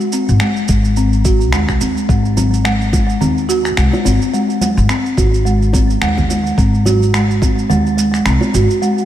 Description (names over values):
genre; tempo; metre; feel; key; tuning
organic downtempo; 107 BPM; 4/4; swing 57% on 16ths; Ab mixolydian; A4 = 440 Hz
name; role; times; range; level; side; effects
folk marimba with medium mallets; arpeggios; 0.0-9.1 s; Ab3 to Gb4; -16 LUFS; equal; low-pass filter, tape echo
electronic cabasa and finger snaps; drums; 0.0-9.1 s; none; -22 LUFS; right 1 dB; overdrive
upright bass; bass; 0.3-8.6 s; Ab1 to Eb2; -16 LUFS; equal; tube saturation, sidechain pumping
electronic kick drum; drums; 0.7-7.5 s; none; -16 LUFS; equal; overdrive
bongos and congas; percussion; 2.4-8.7 s; none; -24 LUFS; right 2 dB; none
room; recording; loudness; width
moderate lush hall reverb, RT60 2.9 s; dreamy mix soaked in reverb; -12 LUFS; side -12 dB against mid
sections
0.0-9.1 A section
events
none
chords
0.0 Ab